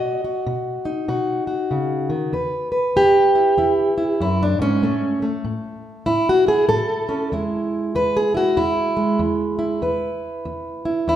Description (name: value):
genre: acoustic country blues, solo or duo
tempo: 96 BPM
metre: 4/4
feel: swing 62% on 8ths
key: E major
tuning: A4 = 442 Hz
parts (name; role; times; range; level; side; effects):
- fingerpicked plugged-in steel-string acoustic guitar; solo; 0.0-11.2 s; E2 to D#5; -18 LUFS; equal; none
room: wet recital hall reverb, RT60 1.5 s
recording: recorded in a church or concert hall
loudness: -18 LUFS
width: side -11 dB against mid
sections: 0.0-2.3 A section; 2.3-11.2 B section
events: steel-string acoustic guitar solo 2.3-11.2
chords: 0.0 B; 2.3 E5; 4.8 A; 7.3 E